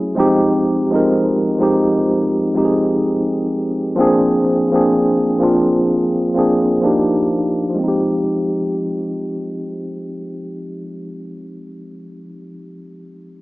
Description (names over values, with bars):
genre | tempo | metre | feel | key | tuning
R&B | 63 BPM | 4/4 | swing 58% on 16ths | F dorian | A4 = 440 Hz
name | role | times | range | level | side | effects
mellow tine electric piano | solo | 0.0-13.4 s | F3 to Bb4 | -16 LUFS | equal | medium stereo tremolo, low-pass filter
room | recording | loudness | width
moderate lush hall reverb, RT60 2.3 s | rough home demo mix, small speaker sound | -14 LUFS | side -20 dB against mid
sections
0.0-7.8 A section; 7.8-11.6 B section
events
filter sweep on tine electric piano 0.0-7.8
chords
0.2 Fm7; 4.0 Bb9; 6.8 Ebmaj7; 7.8 Fm7